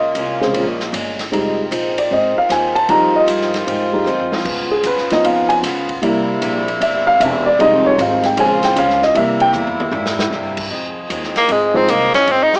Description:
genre	jazz, big band swing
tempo	153 BPM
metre	4/4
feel	swing 66% on 8ths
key	F minor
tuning	A4 = 441 Hz
part	dark grand piano	accompaniment	0.0-11.9 s	Db3 to Bb5	-14 LUFS	equal	none
part	picked acoustic archtop guitar	accompaniment	0.0-12.6 s	F2 to Ab4	-24 LUFS	equal	none
part	warm saxophone section	sustained chords	0.0-12.6 s	Bb2 to Eb5	-23 LUFS	equal	none
part	upright bass	bass	0.0-12.5 s	E1 to Ab2	-25 LUFS	equal	none
part	swinging big-band drum kit	drums	0.1-12.6 s	crash cymbal, hi-hat, kick drum, ride cymbal, snare drum, toms	-25 LUFS	equal	cassette tape
part	bright tenor saxophone	melody	11.4-12.6 s	Ab3 to G4	-12 LUFS	equal	none
room	wet small room reverb, RT60 0.5 s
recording	home recording on cassette, small speaker sound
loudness	-13 LUFS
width	side -39 dB against mid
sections	0.0-10.7 A section; 10.7-12.6 A section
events	grand piano solo 0.0-10.7; drum fill 4.1-4.5, 9.5-10.3; tenor saxophone solo 10.7-12.6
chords	0.0 Bbm7; 1.3 Fm7; 4.5 Db7; 6.0 C7; 7.6 Fm7; 8.4 Bbm7; 9.1 C7; 10.7 Fm7

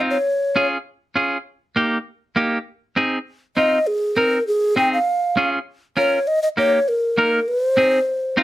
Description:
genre	latin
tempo	199 BPM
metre	4/4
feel	straight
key	Ab major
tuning	A4 = 440 Hz
part	clean electric guitar	accompaniment	0.0-8.4 s	Bb3 to Bb4	-18 LUFS	right 1 dB	none
part	breathy mellow round clay ocarina	melody	0.1-0.7, 3.6-8.4 s	Ab4 to G5	-18 LUFS	equal	none
room	light reverb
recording	close, detailed microphones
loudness	-18 LUFS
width	side -15 dB against mid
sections	0.0-8.4 A section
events	none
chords	0.3 Db; 1.5 Eb; 2.7 Ab; 5.1 Db; 6.3 Eb7; 7.5 Ab

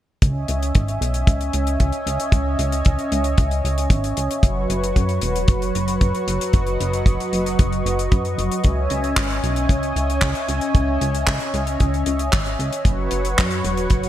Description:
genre	italo disco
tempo	114 BPM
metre	4/4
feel	straight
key	C# minor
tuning	A4 = 440 Hz
part	warm analog pad	sustained chords	0.2-14.1 s	F#3 to C#6	-23 LUFS	equal	chorus
part	chorused synth bass	bass	0.2-14.1 s	E1 to F#2	-23 LUFS	equal	tube saturation
part	damped 70s drum kit	drums	0.2-14.1 s	handclaps, hi-hat	-27 LUFS	left 1 dB	gated reverb
part	kick drum	drums	0.2-14.0 s	none	-16 LUFS	equal	none
room	light reverb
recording	bright 1980s-style digital production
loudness	-18 LUFS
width	side -12 dB against mid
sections	0.2-14.1 A section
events	none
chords	0.2 C#madd9; 4.4 F#sus4; 8.6 C#madd9; 12.9 F#sus4

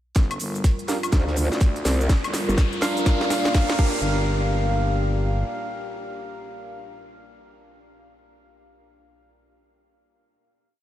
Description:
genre	bass house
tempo	124 BPM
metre	4/4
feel	swing 62% on 16ths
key	G minor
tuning	A4 = 440 Hz
part	damped 70s drum kit	drums	0.1-3.8 s	hi-hat, snare drum	-43 LUFS	right 3 dB	none
part	dark analog pad	sustained chords	0.2-6.9 s	G3 to F5	-31 LUFS	left 1 dB	chorus, sidechain pumping
part	growling FM bass	bass	0.2-5.4 s	G1 to D2	-25 LUFS	equal	tube saturation, sidechain pumping, high-pass filter
part	electronic kick drum	drums	0.2-3.9 s	none	-19 LUFS	equal	none
part	garage drum kit	drums	0.2-3.9 s	cabasa, crash cymbal, hi-hat, snare drum, woodblock	-28 LUFS	equal	none
part	riser	sound effects	1.7-4.0 s	none	-35 LUFS	equal	none
part	percussive organ stab	stabs	0.9-6.9 s	D4 to F5	-28 LUFS	right 1 dB	chorus, vintage 12-bit sampler grit, sidechain pumping, analog delay
part	growl bass	bass	1.1-2.6 s	G1 to D2	-21 LUFS	equal	chorus, overdrive, sidechain pumping
room	wet huge ambient reverb, RT60 7.0 s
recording	dreamy mix soaked in reverb, faint mains hum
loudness	-20 LUFS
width	side -12 dB against mid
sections	0.2-4.0 build; 4.0-7.9 final hit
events	build-up 0.2-4.0; drum fill 0.2-4.0; filter sweep on synth stab 0.2-4.0; riser 1.7-4.0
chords	0.2 Gm7; 1.1 Dm; 2.1 Gm7; 3.1 Bb; 3.8 Gm7

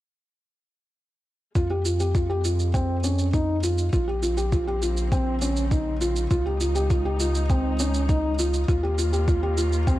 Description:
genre	piano and strings electronica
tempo	101 BPM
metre	4/4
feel	straight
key	unclear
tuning	A4 = 440 Hz
part	dark studio string section	sustained chords	1.6-10.0 s	Db3 to F4	-37 LUFS	left 2 dB	stereo widening, sidechain pumping
part	felt-muted upright piano	riff	1.6-10.0 s	C4 to G4	-26 LUFS	equal	digital delay
part	round analog bass	bass	1.6-10.0 s	Bb1 to F2	-25 LUFS	equal	sidechain pumping
part	electronic kick drum	drums	1.6-10.0 s	none	-23 LUFS	equal	small room ambience
part	shaker	drums	1.6-10.0 s	none	-34 LUFS	right 4 dB	small room ambience
room	light reverb, small room reverb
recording	none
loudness	-21 LUFS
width	side -15 dB against mid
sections	1.6-10.0 A section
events	fade-in on string section 1.6-10.0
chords	1.6 Fmadd9; 3.9 Bbmadd9; 6.3 Dbsus2; 8.7 Ebsus2

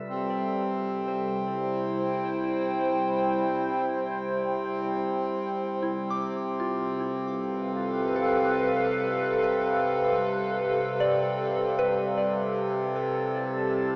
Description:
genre	ambient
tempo	77 BPM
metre	4/4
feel	straight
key	C major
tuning	A4 = 441 Hz
part	warbly tape-like pad	sustained chords	0.0-14.0 s	C3 to G5	-27 LUFS	equal	chorus, built-in reverb, phaser
part	drifting glass-harmonics texture	texture	0.0-0.1, 12.8-14.0 s	A4 to E6	-38 LUFS	equal	chorus, built-in reverb
part	deep rumbling drone	bass	1.0-14.0 s	C2	-56 LUFS	equal	none
part	hand-pumped harmonium	drone	0.1-14.0 s	C3	-30 LUFS	equal	none
part	soft synth bell	arpeggios	0.3-14.0 s	E4 to D6	-32 LUFS	equal	chorus, tape echo
room	wet cathedral reverb, RT60 5.4 s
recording	in a vast, echoing space, small speaker sound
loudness	-24 LUFS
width	side -30 dB against mid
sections	0.1-14.0 A section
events	fade-in on synth bell 0.1-14.0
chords	0.1 C; 6.3 G7/C; 12.6 C

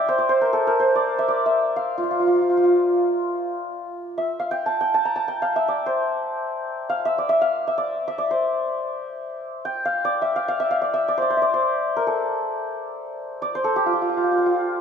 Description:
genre	Persian modal ensemble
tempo	free time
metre	none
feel	none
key	F dastgah mahur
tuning	A4 = 439 Hz
part	santur	solo	0.0-14.8 s	F4 to Bb5	-20 LUFS	equal	none
room	moderate concert hall reverb, RT60 2.4 s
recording	none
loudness	-20 LUFS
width	side -7 dB against mid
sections	0.0-3.9 A section; 3.9-14.8 A section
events	none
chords	none

